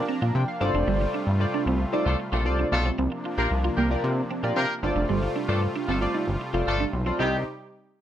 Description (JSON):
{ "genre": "funk", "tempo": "114 BPM", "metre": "4/4", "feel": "straight", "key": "unclear", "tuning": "A4 = 440 Hz", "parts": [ { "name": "chorused polysynth", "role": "accompaniment", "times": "0.0-7.4 s", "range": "Eb4 to Bb5", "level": "-28 LUFS", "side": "left 1 dB", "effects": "none" }, { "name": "brassy analog pad", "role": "sustained chords", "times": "0.0-7.4 s", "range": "C3 to G4", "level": "-32 LUFS", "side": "equal", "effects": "chorus" }, { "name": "clean electric guitar", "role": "riff", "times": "0.1-7.3 s", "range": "G3 to F4", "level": "-30 LUFS", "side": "right 4 dB", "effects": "analog chorus" }, { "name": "chorused synth bass", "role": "bass", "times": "0.2-7.4 s", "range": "F1 to C3", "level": "-25 LUFS", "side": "equal", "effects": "none" }, { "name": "clear horn section", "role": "second line", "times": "2.1-7.4 s", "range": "Eb3 to Bb4", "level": "-28 LUFS", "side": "left 1 dB", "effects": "none" } ], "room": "light reverb", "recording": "none", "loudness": "-23 LUFS", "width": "side -11 dB against mid", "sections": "0.0-3.0 A section; 3.0-7.2 B section", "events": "band accent 0.9-3.0", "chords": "0.0 C9sus4; 0.6 G9sus4; 3.0 C9sus4; 4.8 G9sus4; 7.2 Cm", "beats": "0.35 | 0.88 1.40 1.93 2.46 | 2.98 3.51 4.03 4.56 | 5.09 5.61 6.14 6.67 | 7.19" }